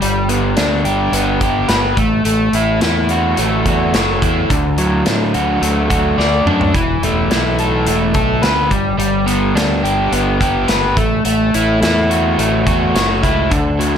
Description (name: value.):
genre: classic rock.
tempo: 107 BPM.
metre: 4/4.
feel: straight.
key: unclear.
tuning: A4 = 437 Hz.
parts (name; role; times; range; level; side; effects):
crunchy overdriven guitar; riff; 0.0-14.0 s; D3 to D5; -15 LUFS; equal; none.
growling fingered electric bass; bass; 0.0-14.0 s; E1 to A2; -19 LUFS; equal; overdrive.
big rock drum kit; drums; 0.0-14.0 s; hi-hat, kick drum, snare drum, toms; -20 LUFS; equal; none.
room: moderate large studio reverb, RT60 0.8 s, small room ambience.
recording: none.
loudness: -13 LUFS.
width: side -8 dB against mid.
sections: 0.0-14.0 A section.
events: drum fill 6.2-6.8.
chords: 0.0 G; 2.0 A6; 4.5 D; 6.8 Esus4; 8.7 G; 11.0 A6.